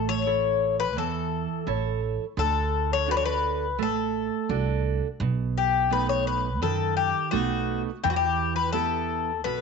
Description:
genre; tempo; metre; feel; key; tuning
greek folk, Greek bouzouki band; 85 BPM; 4/4; straight; D major; A4 = 440 Hz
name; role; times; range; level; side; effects
Greek bouzouki; melody; 0.0-9.6 s; F#4 to C#5; -26 LUFS; left 10 dB; slapback echo
fingerpicked steel-string acoustic guitar; accompaniment; 0.0-9.6 s; B2 to C#5; -30 LUFS; right 17 dB; none
upright bass; bass; 0.0-9.6 s; A1 to F#2; -30 LUFS; right 3 dB; none
room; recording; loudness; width
moderate spring reverb, RT60 1.3 s, studio reverb; 1960s-style stereo with parts hard left and right, nothing above 7.9 kHz; -23 LUFS; side -5 dB against mid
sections
0.0-9.6 A section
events
none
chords
0.0 A; 2.4 D; 5.2 B7; 8.0 Em

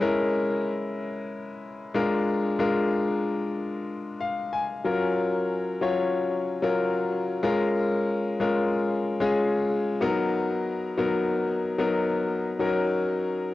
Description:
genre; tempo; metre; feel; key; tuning
pop; 93 BPM; 4/4; straight; F# major; A4 = 440 Hz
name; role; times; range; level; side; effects
bright concert grand piano; solo; 0.0-13.5 s; F#3 to G#5; -24 LUFS; left 2 dB; cassette tape, analog delay
room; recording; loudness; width
moderate spring reverb, RT60 2.1 s; home recording on cassette; -24 LUFS; side -16 dB against mid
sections
0.0-4.9 A section; 4.9-13.5 B section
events
grand piano fill 3.9-4.9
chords
0.0 C#m7/G#; 2.0 A#7; 4.9 F#maj7; 7.4 A#m7; 10.0 Bmaj7; 12.6 D#m7

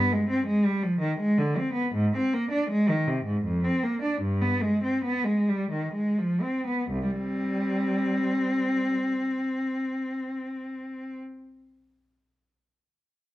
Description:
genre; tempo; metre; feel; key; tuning
classical, baroque-style suite movement for unaccompanied cello; 61-84 BPM; 3/4; rubato; C minor; A4 = 442 Hz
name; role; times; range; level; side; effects
clear cello; solo; 0.0-11.2 s; C2 to D4; -24 LUFS; equal; none
room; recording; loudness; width
light reverb; dark, warm production; -24 LUFS; side -15 dB against mid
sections
0.0-6.9 A section; 6.9-12.6 B section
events
slowing down 0.8-6.9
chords
0.0 G; 1.9 Ab; 3.4 F5; 4.2 G7; 6.9 C5

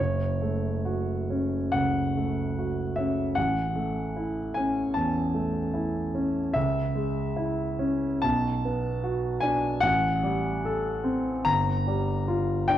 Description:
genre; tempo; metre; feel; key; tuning
classical, impressionist solo piano; 65-77 BPM; 4/4; rubato; F# minor; A4 = 436 Hz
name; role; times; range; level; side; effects
warm concert grand piano; solo; 0.0-12.8 s; F#1 to Bb5; -24 LUFS; equal; none
room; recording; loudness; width
moderate recital hall reverb, RT60 1.7 s; dark, warm production; -25 LUFS; side -11 dB against mid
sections
0.0-12.8 A section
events
none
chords
0.0 F#m; 3.4 A; 6.6 C#m; 8.2 Bm7; 9.8 Am7; 11.5 Gm7

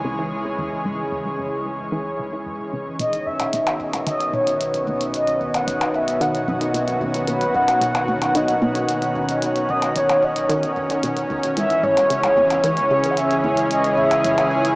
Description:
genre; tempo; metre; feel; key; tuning
ambient, sequencer-driven space music; 112 BPM; 4/4; straight; unclear; A4 = 437 Hz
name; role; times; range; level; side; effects
lush unison pad; sustained chords; 0.0-14.8 s; D#3 to C#5; -22 LUFS; equal; chorus, shimmer reverb
tight sequenced synth; riff; 0.0-14.4 s; C#2 to E3; -29 LUFS; equal; chorus, shimmer reverb, tape echo
analog drone; bass; 0.0-14.8 s; B1 to C#2; -34 LUFS; equal; chorus
mellow horn-like synth lead; melody; 3.0-14.8 s; B4 to F#5; -20 LUFS; equal; lush chorus, shimmer reverb, tape echo
electronic hi-hat and percussion blips; percussion; 3.0-14.8 s; none; -28 LUFS; left 1 dB; tape echo
room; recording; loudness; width
wet huge ambient reverb, RT60 7.6 s; dreamy mix soaked in reverb, small speaker sound; -18 LUFS; side -24 dB against mid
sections
0.0-14.8 A section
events
fade-in on analog synth pad 0.0-14.8; filter sweep on synth arpeggio sound 0.0-14.8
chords
0.0 C#m; 3.0 Badd9; 11.6 C#m

